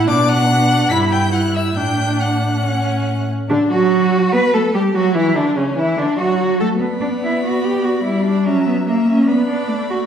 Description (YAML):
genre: quick classical-period movement for string quartet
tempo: 145 BPM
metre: 4/4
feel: straight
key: D major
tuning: A4 = 440 Hz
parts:
  - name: rich violin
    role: second line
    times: 0.0-10.1 s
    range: C#4 to B5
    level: -23 LUFS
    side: left 2 dB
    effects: none
  - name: warm viola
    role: accompaniment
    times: 0.0-10.1 s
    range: C#3 to E4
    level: -18 LUFS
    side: right 1 dB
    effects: none
  - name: rich cello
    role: bass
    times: 0.0-10.0 s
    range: G2 to B4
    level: -19 LUFS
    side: right 2 dB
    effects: none
  - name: rich violin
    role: melody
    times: 0.1-10.1 s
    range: C#4 to B6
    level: -25 LUFS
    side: left 4 dB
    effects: none
room: wet recital hall reverb, RT60 1.2 s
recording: heard from further back in the room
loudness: -14 LUFS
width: side -8 dB against mid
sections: 0.0-3.5 A section; 3.5-10.1 B section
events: none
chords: 0.1 Bm; 0.9 Em/G; 1.8 D/A; 2.6 A; 3.5 D; 5.2 C#m; 6.0 D; 6.8 Bm; 8.5 F#7; 9.3 Bm